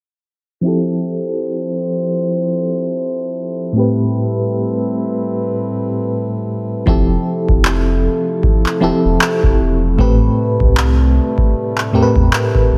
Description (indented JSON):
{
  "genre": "contemporary R&B",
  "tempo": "77 BPM",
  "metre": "4/4",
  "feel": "swing 58% on 16ths",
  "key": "unclear",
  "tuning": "A4 = 438 Hz",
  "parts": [
    { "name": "FM electric piano with tremolo", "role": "accompaniment", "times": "0.6-12.8 s", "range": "A2 to B4", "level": "-19 LUFS", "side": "equal", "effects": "none" },
    { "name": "mellow brass ensemble", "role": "sustained chords", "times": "0.6-12.8 s", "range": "C3 to C5", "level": "-25 LUFS", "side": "equal", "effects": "none" },
    { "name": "warm sub bass", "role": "bass", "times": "6.9-12.8 s", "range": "E1 to E2", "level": "-18 LUFS", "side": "equal", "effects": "none" },
    { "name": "booming analog drum machine", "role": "drums", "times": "6.9-12.7 s", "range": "handclaps, kick drum", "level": "-17 LUFS", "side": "equal", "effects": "none" }
  ],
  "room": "little or no reverb",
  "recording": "low-pass filter",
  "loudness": "-16 LUFS",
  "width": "mono",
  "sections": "0.6-6.9 A section; 6.9-12.8 B section",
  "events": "filter sweep 0.6-6.9",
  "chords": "0.6 Fmaj7; 3.8 Am9; 6.9 Fmaj7; 10.0 Am9"
}